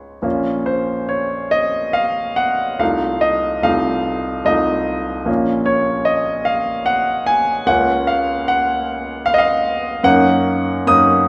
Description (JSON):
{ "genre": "classical, romantic character piece for solo piano", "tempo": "64-78 BPM", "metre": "3/4", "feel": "rubato", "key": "Bb minor", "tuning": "A4 = 440 Hz", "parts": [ { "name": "bright grand piano", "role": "solo", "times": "0.0-11.3 s", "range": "Bb1 to Eb6", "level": "-18 LUFS", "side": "equal", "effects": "none" } ], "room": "wet concert hall reverb, RT60 2.1 s", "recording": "recorded in a church or concert hall", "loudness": "-18 LUFS", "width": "mono", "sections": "0.2-11.3 A section", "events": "none", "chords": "0.2 Bbm; 2.8 F7/C; 5.3 Bbm; 7.7 Bbm/Db; 10.1 Ebm7/Gb" }